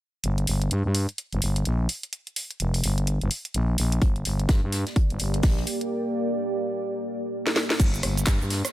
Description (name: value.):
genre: bass house.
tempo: 127 BPM.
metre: 4/4.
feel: swing 60% on 16ths.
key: G minor.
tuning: A4 = 440 Hz.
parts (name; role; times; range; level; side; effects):
growling FM bass; bass; 0.2-8.6 s; F1 to G2; -24 LUFS; equal; sidechain pumping.
house drum kit; drums; 0.2-8.7 s; crash cymbal, handclaps, hi-hat, rim click, shaker, snare drum; -28 LUFS; equal; none.
deep dark ambient pad; sustained chords; 4.9-7.8 s; Bb3 to D5; -29 LUFS; right 1 dB; chorus, built-in reverb, sidechain pumping.
electronic kick drum; drums; 4.0-8.4 s; none; -21 LUFS; equal; none.
unplugged drum kit; drums; 4.0-8.7 s; hi-hat, snare drum; -38 LUFS; left 2 dB; high-pass filter on hats, high-pass filter on snare, high-pass filter on room.
room: little or no reverb.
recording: none.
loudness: -23 LUFS.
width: side -14 dB against mid.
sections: 0.2-7.8 A section.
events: break 5.9-7.8; drum fill 7.4-7.8.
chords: 0.2 Gm; 7.8 N.C..